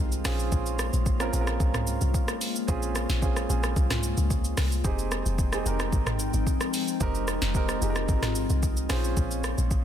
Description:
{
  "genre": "amapiano",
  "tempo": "111 BPM",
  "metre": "4/4",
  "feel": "straight",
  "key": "unclear",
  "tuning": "A4 = 439 Hz",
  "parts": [
    { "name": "warm baby grand piano", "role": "accompaniment", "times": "0.0-9.8 s", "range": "Ab3 to C5", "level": "-33 LUFS", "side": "right 6 dB", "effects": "none" },
    { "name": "glassy FM pad", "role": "sustained chords", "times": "0.0-9.8 s", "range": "F3 to G5", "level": "-33 LUFS", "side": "left 4 dB", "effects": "ensemble chorus, built-in reverb" },
    { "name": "deep log drum bass", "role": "bass", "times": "0.0-9.8 s", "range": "F1 to Db2", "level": "-28 LUFS", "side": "equal", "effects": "none" },
    { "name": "smooth R&B drum kit", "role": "drums", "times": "0.1-9.8 s", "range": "hi-hat, kick drum, rim click, shaker, snare drum, toms", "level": "-28 LUFS", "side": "equal", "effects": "overdrive" }
  ],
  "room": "digital ambience",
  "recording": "dense, heavily limited modern master",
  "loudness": "-24 LUFS",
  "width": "side -10 dB against mid",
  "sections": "0.0-9.8 A section",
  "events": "none",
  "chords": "0.3 Bbm7; 4.8 Fm7; 8.9 Bbm7",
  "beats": "| 0.52 1.06 1.60 2.14 | 2.68 3.23 3.77 4.31 | 4.85 5.39 5.93 6.47 | 7.01 7.55 8.09 8.63 | 9.17 9.71"
}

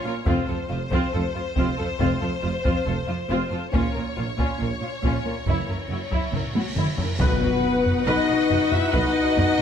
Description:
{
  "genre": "cinematic, epic orchestral film score",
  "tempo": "69 BPM",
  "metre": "4/4",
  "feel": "straight",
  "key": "unclear",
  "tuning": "A4 = 440 Hz",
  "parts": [
    { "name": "rich symphonic violin section", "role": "melody", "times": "0.0-9.6 s", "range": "B4 to E5", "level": "-31 LUFS", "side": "left 4 dB", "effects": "none" },
    { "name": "warm symphonic violin section", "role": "second line", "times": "0.0-9.6 s", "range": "C4 to E5", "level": "-30 LUFS", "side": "left 5 dB", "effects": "none" },
    { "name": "clear symphonic viola section", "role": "accompaniment", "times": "0.0-9.6 s", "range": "D#4 to F#5", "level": "-31 LUFS", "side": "right 2 dB", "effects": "none" },
    { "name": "clear symphonic cello section", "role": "bass", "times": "0.1-9.6 s", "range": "F2 to B2", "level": "-30 LUFS", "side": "right 3 dB", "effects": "none" },
    { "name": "mellow French horn section", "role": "sustained chords", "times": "0.3-9.6 s", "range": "Fb3 to E4", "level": "-25 LUFS", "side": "left 5 dB", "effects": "none" },
    { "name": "clear symphonic double bass section", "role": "bass", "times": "0.3-9.5 s", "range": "F1 to B1", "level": "-30 LUFS", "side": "right 3 dB", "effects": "none" },
    { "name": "taiko ensemble", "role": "drums", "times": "0.3-9.6 s", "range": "none", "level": "-26 LUFS", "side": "equal", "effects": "none" },
    { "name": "cymbal swell and impact", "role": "sound effects", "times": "5.8-9.6 s", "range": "none", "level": "-35 LUFS", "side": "equal", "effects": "none" },
    { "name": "clear symphonic string section", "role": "sustained chords", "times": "7.2-9.6 s", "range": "D#4 to F#5", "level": "-29 LUFS", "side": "equal", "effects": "none" },
    { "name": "timpani", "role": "percussion", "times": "7.2-8.5 s", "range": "B2", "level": "-30 LUFS", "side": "equal", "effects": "none" }
  ],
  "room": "moderate scoring stage reverb, RT60 1.6 s",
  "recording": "close, detailed microphones",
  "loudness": "-21 LUFS",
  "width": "side -8 dB against mid",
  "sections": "0.0-7.2 A section; 7.2-9.6 B section",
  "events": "cymbal swell 5.8-7.2; drum fill 6.3-7.2; impact 7.2-9.6",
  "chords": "0.3 F; 3.7 Bbm; 5.5 Gb7; 7.2 B",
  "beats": "| 0.27 1.14 2.00 2.87 | 3.74 4.61 5.47 6.34 | 7.21 8.07 8.94"
}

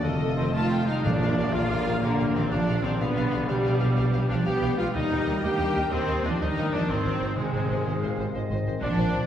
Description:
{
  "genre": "cinematic, heroic adventure film score",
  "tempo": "124 BPM (dotted quarters)",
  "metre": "12/8",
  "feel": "straight",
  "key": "Bb mixolydian",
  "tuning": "A4 = 440 Hz",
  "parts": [
    { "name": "rich symphonic violin section", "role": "melody", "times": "0.0-9.2 s", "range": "C5 to A5", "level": "-38 LUFS", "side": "left 4 dB", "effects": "none" },
    { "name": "clear clarinet", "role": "second line", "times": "0.0-0.9 s", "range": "Eb5", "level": "-40 LUFS", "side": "equal", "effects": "none" },
    { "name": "mellow hollow flute section", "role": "second line", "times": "0.0-9.3 s", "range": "A4 to F5", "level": "-39 LUFS", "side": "left 1 dB", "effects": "none" },
    { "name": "rich chamber violin section", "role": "second line", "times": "0.0-9.3 s", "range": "G4 to G5", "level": "-40 LUFS", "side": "left 3 dB", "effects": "none" },
    { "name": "warm cor anglais", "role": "second line", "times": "0.0-9.3 s", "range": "G3 to F5", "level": "-37 LUFS", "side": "right 1 dB", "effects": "none" },
    { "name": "clear symphonic viola section", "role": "accompaniment", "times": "0.0-9.3 s", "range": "G3 to A4", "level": "-30 LUFS", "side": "left 1 dB", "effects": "none" },
    { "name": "mellow French horn section", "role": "sustained chords", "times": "0.0-9.3 s", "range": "A3 to C5", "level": "-40 LUFS", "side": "left 3 dB", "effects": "none" },
    { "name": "warm trombone section", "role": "sustained chords", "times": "0.0-9.3 s", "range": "Eb3 to Eb4", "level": "-38 LUFS", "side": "equal", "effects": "none" },
    { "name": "concert harp", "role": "arpeggios", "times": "0.0-9.3 s", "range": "F2 to A5", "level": "-36 LUFS", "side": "left 3 dB", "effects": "none" },
    { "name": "clear trumpet section", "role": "stabs", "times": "0.0-9.3 s", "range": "G4 to G5", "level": "-35 LUFS", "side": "equal", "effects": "none" },
    { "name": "clear symphonic double bass section", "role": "bass", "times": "0.0-9.2 s", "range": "F1 to Eb2", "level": "-30 LUFS", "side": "right 1 dB", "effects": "none" },
    { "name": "dark tuba", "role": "bass", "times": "0.0-0.9 s", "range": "F1", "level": "-35 LUFS", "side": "right 1 dB", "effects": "none" },
    { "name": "rich symphonic cello section", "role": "bass", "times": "0.0-9.3 s", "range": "F2 to B3", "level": "-28 LUFS", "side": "right 2 dB", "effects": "none" },
    { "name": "tam-tam", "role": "percussion", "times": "1.1-2.3 s", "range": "none", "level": "-35 LUFS", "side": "left 2 dB", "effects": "none" },
    { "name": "timpani", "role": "percussion", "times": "1.1-1.5 s", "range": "Bb2", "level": "-32 LUFS", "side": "right 1 dB", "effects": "none" }
  ],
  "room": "wet concert hall reverb, RT60 2.0 s",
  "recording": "heard from further back in the room",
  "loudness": "-23 LUFS",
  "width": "side -10 dB against mid",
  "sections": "0.0-1.0 A section; 1.0-9.3 B section",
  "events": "band accent 1.0-1.4",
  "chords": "0.0 F7; 1.0 Bb; 3.0 G7/B; 4.9 Eb; 6.9 Ab",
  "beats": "0.04 0.54 | 1.04 1.54 2.03 2.51 | 3.00 3.49 3.97 4.46 | 4.94 5.43 5.91 6.40 | 6.89 7.37 7.85 8.34 | 8.82"
}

